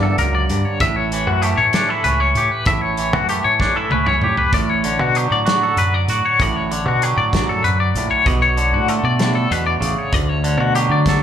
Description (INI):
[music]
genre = math rock and midwest emo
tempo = 64 BPM (dotted quarters)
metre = 6/8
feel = straight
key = D major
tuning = A4 = 440 Hz
[part]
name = twangy electric guitar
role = accompaniment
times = 0.0-11.2 s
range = D2 to A4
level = -21 LUFS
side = right 5 dB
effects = slapback echo
[part]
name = twangy electric guitar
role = arpeggios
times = 0.0-11.2 s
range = F#4 to E5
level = -19 LUFS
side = left 6 dB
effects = tremolo
[part]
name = fingered electric bass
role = bass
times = 0.0-11.2 s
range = A1 to D3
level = -20 LUFS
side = equal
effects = none
[part]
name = loose indie drum kit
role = drums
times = 0.2-11.2 s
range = hi-hat, kick drum, snare drum, toms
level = -23 LUFS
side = equal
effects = none
[sound]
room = small room reverb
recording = live gig heard through the venue's PA, club reverb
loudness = -15 LUFS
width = side -9 dB against mid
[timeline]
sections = 0.0-11.2 A section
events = drum fill 3.6-4.5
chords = 0.0 Gm6; 0.8 A7; 4.5 Dmaj7/A; 8.3 Bm9; 10.1 Dmaj7